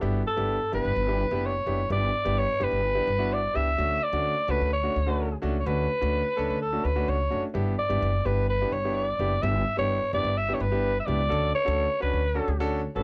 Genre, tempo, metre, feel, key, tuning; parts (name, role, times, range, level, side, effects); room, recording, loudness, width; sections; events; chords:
uptempo 1960s-style soul; 128 BPM; 4/4; straight; A4 = 440 Hz
clear grand piano; accompaniment; 0.0-13.0 s; A3 to B4; -34 LUFS; equal
upright bass; bass; 0.0-13.0 s; F#1 to D2; -31 LUFS; equal
growling alto saxophone; melody; 0.3-13.0 s; A4 to E5; -29 LUFS; equal
light reverb; -26 LUFS; mono
0.0-13.0 A section
0.0 G6; 3.8 Dmaj7; 7.5 G6; 11.3 Dmaj7